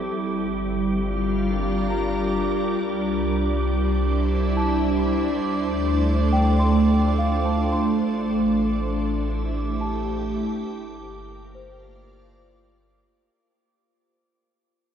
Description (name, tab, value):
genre	ambient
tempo	68 BPM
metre	3/4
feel	straight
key	unclear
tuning	A4 = 436 Hz
part	soft additive organ-like pad	sustained chords	0.0-13.3 s	G3 to D5	-22 LUFS	equal	ensemble chorus, built-in reverb
part	celesta	arpeggios	0.0-13.4 s	C5 to C6	-32 LUFS	equal	tape echo
part	round analog bass	bass	0.0-13.3 s	G1 to D2	-26 LUFS	equal	none
part	wind-like tuned noise texture	texture	0.0-13.4 s	D6	-35 LUFS	right 5 dB	built-in reverb
room	wet huge ambient reverb, RT60 7.9 s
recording	dark, warm production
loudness	-20 LUFS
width	side -8 dB against mid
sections	0.0-13.3 A section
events	fade-in on celesta 0.0-13.3; fade-in on analog synth bass 0.0-13.3; fade-in on synth texture 0.0-13.3; fade-out 6.3-13.3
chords	0.2 Gm7; 2.8 Cadd9; 5.4 Dm7; 8.1 Am7; 10.7 Gm7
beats	| 0.16 1.03 1.91 | 2.80 3.69 4.57 | 5.44 6.32 7.20 | 8.07 8.95 9.82 | 10.69 11.57 12.46